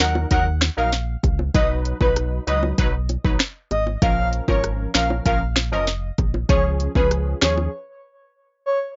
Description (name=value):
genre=dancehall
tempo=97 BPM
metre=4/4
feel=straight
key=unclear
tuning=A4 = 440 Hz
part: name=breathy flute-like synth lead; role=melody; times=0.0-8.8 s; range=B4 to Gb5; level=-26 LUFS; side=equal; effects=chorus, tremolo, tape echo
part: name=synth brass stab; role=accompaniment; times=0.0-7.7 s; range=F3 to B4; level=-28 LUFS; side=equal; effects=chorus
part: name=sub bass with octave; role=bass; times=0.0-7.7 s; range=F1 to Eb2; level=-26 LUFS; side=equal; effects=none
part: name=afro-pop drum kit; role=drums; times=0.0-7.6 s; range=finger snaps, hi-hat, kick drum, rim click, snare drum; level=-23 LUFS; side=equal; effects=none
part: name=bongos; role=percussion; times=0.2-7.7 s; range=none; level=-31 LUFS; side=equal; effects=none
room=little or no reverb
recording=nothing above 7.5 kHz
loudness=-21 LUFS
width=mono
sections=0.0-9.0 A section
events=break 7.7-9.0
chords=0.0 Ebm; 1.5 B; 4.0 Bbm; 6.5 Db